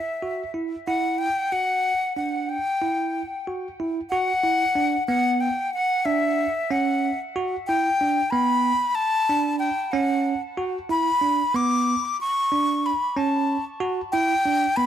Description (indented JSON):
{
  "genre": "progressive instrumental, progressive",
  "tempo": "186 BPM (eighths)",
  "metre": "5/8",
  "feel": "straight",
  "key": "unclear",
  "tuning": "A4 = 438 Hz",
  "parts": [
    { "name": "breathy bright silver concert flute", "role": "melody", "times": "0.0-14.9 s", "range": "E5 to D6", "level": "-22 LUFS", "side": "left 2 dB", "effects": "tape echo" },
    { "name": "bell-like tine electric piano", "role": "arpeggios", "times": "0.2-14.9 s", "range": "B3 to F#4", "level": "-25 LUFS", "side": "right 3 dB", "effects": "fast stereo tremolo" }
  ],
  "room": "moderate studio reverb, RT60 0.6 s",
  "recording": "dark, warm production",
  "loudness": "-21 LUFS",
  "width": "side -10 dB against mid",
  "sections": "0.0-4.1 A section; 4.1-14.9 B section",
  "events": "none",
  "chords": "0.0 Dadd9; 4.1 Bmadd11; 5.7 C#madd11; 7.3 Gmaj7; 9.0 D5; 10.6 Bmadd11; 12.2 Bm9; 13.8 Gmaj7"
}